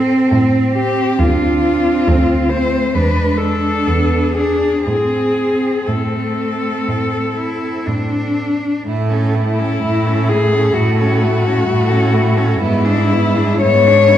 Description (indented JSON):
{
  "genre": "classical, lyrical piece for cello ensemble",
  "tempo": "57-70 BPM",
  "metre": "4/4",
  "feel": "rubato",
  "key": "A minor, A major from 8.9 s",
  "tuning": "A4 = 440 Hz",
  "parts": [
    { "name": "rich cello", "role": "melody", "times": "0.0-14.2 s", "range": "E4 to C#5", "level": "-17 LUFS", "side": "left 4 dB", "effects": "none" },
    { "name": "rich cello", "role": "second line", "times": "0.0-14.2 s", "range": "G#3 to A4", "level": "-21 LUFS", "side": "right 4 dB", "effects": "none" },
    { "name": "rich cello", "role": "accompaniment", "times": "0.0-14.2 s", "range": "A3 to E4", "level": "-21 LUFS", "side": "left 1 dB", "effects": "none" },
    { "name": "rich cello", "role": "bass", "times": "0.0-14.2 s", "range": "D2 to A2", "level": "-17 LUFS", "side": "right 1 dB", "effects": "none" }
  ],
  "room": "wet recital hall reverb, RT60 1.5 s",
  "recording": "heard from further back in the room",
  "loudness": "-13 LUFS",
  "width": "side -11 dB against mid",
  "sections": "0.0-8.9 A section; 8.9-14.2 B section",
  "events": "none",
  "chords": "0.0 Am; 1.2 Dm7; 2.9 E7; 4.9 Am; 8.9 A; 12.6 E7/G#"
}